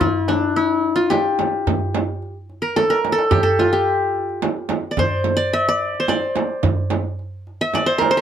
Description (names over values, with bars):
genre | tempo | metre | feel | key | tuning
Arabic maqam ensemble | 109 BPM | 3/4 | straight | D maqam bayati | A4 = 443 Hz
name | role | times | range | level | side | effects
qanun | melody | 0.0-8.2 s | C4 to E5-50c | -18 LUFS | left 1 dB | none
darbuka | percussion | 0.0-8.2 s | none | -24 LUFS | equal | none
frame drum | percussion | 0.0-8.1 s | none | -25 LUFS | right 7 dB | none
room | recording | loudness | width
moderate small room reverb, RT60 0.5 s | dark, warm production | -17 LUFS | side -9 dB against mid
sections
0.0-8.2 A section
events
drum fill 2.8-3.3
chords
none